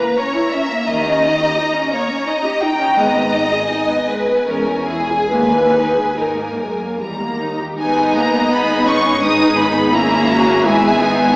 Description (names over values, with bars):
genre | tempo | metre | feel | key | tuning
classical, slow romantic movement for string orchestra | 68-87 BPM | 3/4 | rubato | G# minor | A4 = 440 Hz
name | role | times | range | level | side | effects
warm symphonic violin section | melody | 0.0-11.3 s | G#5 to D#6 | -20 LUFS | left 1 dB | none
rich symphonic violin section | second line | 0.0-11.4 s | G#4 to G5 | -18 LUFS | equal | none
rich symphonic viola section | accompaniment | 0.0-11.4 s | G3 to G#4 | -19 LUFS | equal | none
rich studio double bass section | bass | 0.9-11.4 s | E1 to D#2 | -28 LUFS | equal | none
rich symphonic cello section | bass | 0.9-11.4 s | D#2 to D#4 | -21 LUFS | equal | none
room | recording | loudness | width
wet concert hall reverb, RT60 2.4 s | heard from further back in the room, small speaker sound | -13 LUFS | side -25 dB against mid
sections
0.0-7.8 A section; 7.8-11.4 B section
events
none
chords
0.0 A#dim; 0.9 D#7; 3.0 G#m; 4.5 C#m/E; 5.3 D#sus4; 7.0 D#; 7.8 G#m; 9.9 E/G#